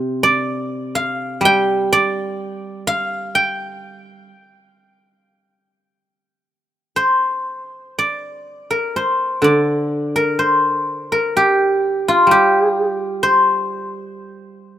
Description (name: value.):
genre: chinese traditional, Chinese solo plucked strings.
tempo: 54-66 BPM.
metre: 4/4.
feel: rubato.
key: G yu mode.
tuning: A4 = 440 Hz.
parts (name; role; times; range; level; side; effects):
guzheng; solo; 0.0-14.8 s; C3 to G5; -15 LUFS; equal; none.
room: light reverb, small room ambience.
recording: rough home demo mix.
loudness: -15 LUFS.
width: side -11 dB against mid.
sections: 0.0-7.5 A section; 7.5-14.8 B section.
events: none.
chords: none.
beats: 0.46 1.43 2.38 | 3.33 4.31 5.32 6.39 | 7.46 8.45 9.43 10.40 | 11.36 12.29 13.21 14.14.